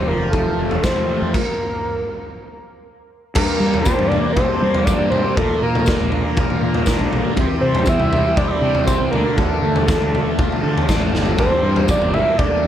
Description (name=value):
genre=psychedelic rock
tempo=120 BPM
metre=4/4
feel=straight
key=G dorian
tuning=A4 = 441 Hz
part: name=fat analog lead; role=melody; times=0.0-12.7 s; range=A4 to E5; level=-21 LUFS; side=equal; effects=tape echo
part: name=combo organ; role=sustained chords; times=0.0-12.7 s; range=G3 to A5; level=-30 LUFS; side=right 4 dB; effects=none
part: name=thick fuzz guitar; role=riff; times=0.0-12.7 s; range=G2 to A4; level=-22 LUFS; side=left 1 dB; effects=distortion, phaser
part: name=fuzz fingered electric bass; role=bass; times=0.0-12.7 s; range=F1 to G3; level=-22 LUFS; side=equal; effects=overdrive
part: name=raw garage drum kit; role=drums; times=0.3-12.5 s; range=crash cymbal, kick drum, snare drum, toms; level=-20 LUFS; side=equal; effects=none
part: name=tambourine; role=percussion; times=0.8-12.0 s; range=none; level=-33 LUFS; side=left 9 dB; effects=none
room=light reverb, small room ambience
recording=none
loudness=-15 LUFS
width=side -10 dB against mid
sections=0.0-3.4 A section; 3.4-12.7 B section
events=stop 1.3-3.4; drum fill 11.1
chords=0.1 Fadd9; 1.3 N.C.; 3.4 Gmadd9; 5.4 Bb; 7.4 C; 9.1 Dm; 11.4 Gmadd9